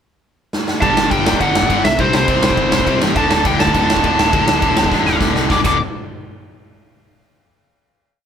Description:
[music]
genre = punk rock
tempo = 205 BPM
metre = 4/4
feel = straight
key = unclear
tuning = A4 = 440 Hz
[part]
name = big rock drum kit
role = drums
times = 0.5-5.7 s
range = crash cymbal, kick drum, snare drum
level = -17 LUFS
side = equal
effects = none
[part]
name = bluesy overdriven lead guitar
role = melody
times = 0.8-5.8 s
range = C5 to D6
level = -18 LUFS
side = right 1 dB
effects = distortion
[part]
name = cranked stack guitar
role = riff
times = 0.8-5.8 s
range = D2 to C4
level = -20 LUFS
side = left 9 dB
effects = overdrive
[part]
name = distorted electric guitar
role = riff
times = 0.8-5.8 s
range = D2 to C4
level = -22 LUFS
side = right 8 dB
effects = overdrive
[part]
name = fuzz picked electric bass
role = bass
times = 0.8-5.8 s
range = D1 to C2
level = -23 LUFS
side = equal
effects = overdrive
[sound]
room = light reverb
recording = band playing live in one room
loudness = -13 LUFS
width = side -8 dB against mid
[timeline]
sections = 0.0-0.8 pickup bar; 0.8-5.5 riff; 5.5-6.7 final chord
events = drum fill 0.5, 4.9-5.5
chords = 0.0 N.C.; 0.8 G5; 1.8 C5; 3.2 D5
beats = 0.23 0.53 | 0.82 1.11 1.41 1.70 | 1.99 2.29 2.58 2.87 | 3.16 3.45 3.75 4.04 | 4.33 4.62 4.91 5.21 | 5.50 5.79

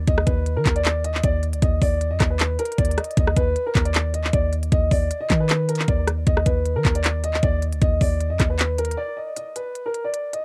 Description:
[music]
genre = hip hop, trap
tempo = 155 BPM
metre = 4/4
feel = half-time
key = unclear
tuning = A4 = 440 Hz
[part]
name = warm 808-style bass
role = bass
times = 0.0-9.0 s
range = D2 to Eb3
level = -25 LUFS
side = equal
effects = none
[part]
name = dark concert grand piano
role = melody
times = 0.1-10.4 s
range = Bb4 to Eb5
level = -28 LUFS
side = equal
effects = cassette tape, plate reverb, tape echo
[part]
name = trap drum kit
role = drums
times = 0.1-10.4 s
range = handclaps, hi-hat, kick drum, rim click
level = -24 LUFS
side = equal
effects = none
[sound]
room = light reverb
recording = home recording on cassette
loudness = -22 LUFS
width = mono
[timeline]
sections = 0.0-9.4 A section; 9.4-10.4 B section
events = break 9.0-9.4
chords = 0.1 N.C.; 3.2 Bbadd11/Eb (rootless); 6.3 N.C.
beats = | 0.07 0.46 0.85 1.24 | 1.62 2.01 2.40 2.79 | 3.17 3.56 3.95 4.33 | 4.72 5.11 5.49 5.88 | 6.27 6.66 7.04 7.43 | 7.82 8.20 8.59 8.98 | 9.37 9.75 10.14

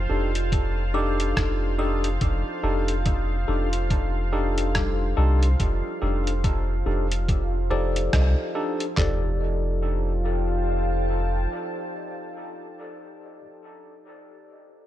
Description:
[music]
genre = ambient dub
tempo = 71 BPM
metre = 4/4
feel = swing 59% on 16ths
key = F mixolydian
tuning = A4 = 440 Hz
[part]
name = deep dark ambient pad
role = sustained chords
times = 0.0-13.1 s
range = F4 to A5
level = -32 LUFS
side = right 1 dB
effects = chorus, built-in reverb
[part]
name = soft dub sub bass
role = bass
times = 0.0-11.5 s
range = F1 to C2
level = -24 LUFS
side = equal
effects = none
[part]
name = tine electric piano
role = stabs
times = 0.1-13.4 s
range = D4 to D5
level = -30 LUFS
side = left 2 dB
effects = fast stereo tremolo, dub echo
[part]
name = lo-fi sampler-style drum kit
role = drums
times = 0.4-8.9 s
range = hi-hat, rim click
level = -31 LUFS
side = equal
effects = none
[part]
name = lo-fi sampler-style drum kit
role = drums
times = 0.5-9.2 s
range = handclaps, kick drum, toms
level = -25 LUFS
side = equal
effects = none
[part]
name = kalimba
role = arpeggios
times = 0.9-13.4 s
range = G3 to Eb6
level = -38 LUFS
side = right 1 dB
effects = dub echo
[sound]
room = digital ambience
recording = none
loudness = -22 LUFS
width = side -13 dB against mid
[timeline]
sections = 0.0-9.0 A section; 9.0-12.4 B section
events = band accent 8.1-8.6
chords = 0.0 F13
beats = 0.52 1.37 | 2.21 3.06 3.90 4.75 | 5.59 6.44 7.28 8.13 | 8.97 9.82 10.66 11.51

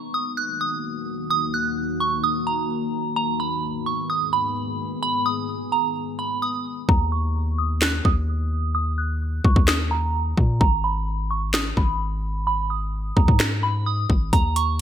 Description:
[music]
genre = hip hop, trap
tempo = 129 BPM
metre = 4/4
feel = half-time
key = Eb minor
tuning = A4 = 440 Hz
[part]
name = soft synth bell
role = melody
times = 0.0-14.8 s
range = Bb5 to Gb6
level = -25 LUFS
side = right 3 dB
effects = chorus, phaser, low-pass filter, digital delay
[part]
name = deep dark ambient pad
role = sustained chords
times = 0.0-6.8 s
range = Eb2 to Ab4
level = -29 LUFS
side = left 2 dB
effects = chorus, built-in reverb
[part]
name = long sustained 808-style bass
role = bass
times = 6.9-14.8 s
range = Ab1 to Bb2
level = -23 LUFS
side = equal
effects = none
[part]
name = trap drum kit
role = drums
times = 6.9-14.7 s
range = finger snaps, hi-hat, kick drum, snare drum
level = -20 LUFS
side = equal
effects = gated reverb
[sound]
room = light reverb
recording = bright 1980s-style digital production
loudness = -20 LUFS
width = side -10 dB against mid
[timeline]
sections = 0.0-6.9 A section; 6.9-14.8 B section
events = hi-hats muted 6.9-14.3; filter sweep on synth bell 6.9-14.3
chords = 0.0 Ebm; 3.2 Abm; 6.9 Eb5; 10.6 Abm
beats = 0.38 0.84 | 1.30 1.77 2.23 2.70 | 3.17 3.63 4.10 4.56 | 5.03 5.49 5.96 6.42 | 6.89 7.35 7.82 8.28 | 8.75 9.21 9.68 10.14 | 10.61 11.07 11.54 12.00 | 12.47 12.93 13.40 13.86 | 14.33 14.79

